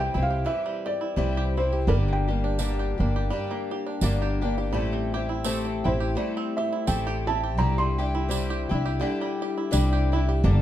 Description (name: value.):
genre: acoustic folk duo or small band.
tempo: 84 BPM.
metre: 4/4.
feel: swing 57% on 8ths.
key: unclear.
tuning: A4 = 440 Hz.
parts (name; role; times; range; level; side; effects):
felt-muted upright piano; melody; 0.0-8.8 s; Bb4 to C6; -29 LUFS; right 2 dB; none.
picked twelve-string acoustic guitar; accompaniment; 0.0-10.6 s; G2 to A4; -29 LUFS; left 5 dB; none.
bluegrass banjo; arpeggios; 0.0-10.6 s; D3 to G4; -33 LUFS; right 6 dB; none.
upright bass; bass; 0.0-10.6 s; G1 to C2; -25 LUFS; equal; none.
tambourine; percussion; 2.6-9.9 s; none; -35 LUFS; right 8 dB; none.
room: light reverb.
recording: dark, warm production.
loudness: -23 LUFS.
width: side -12 dB against mid.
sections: 0.0-10.6 A section.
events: felt piano solo 0.0-10.6.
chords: 0.0 C; 1.9 Gm; 4.7 Am7; 7.6 Cadd9.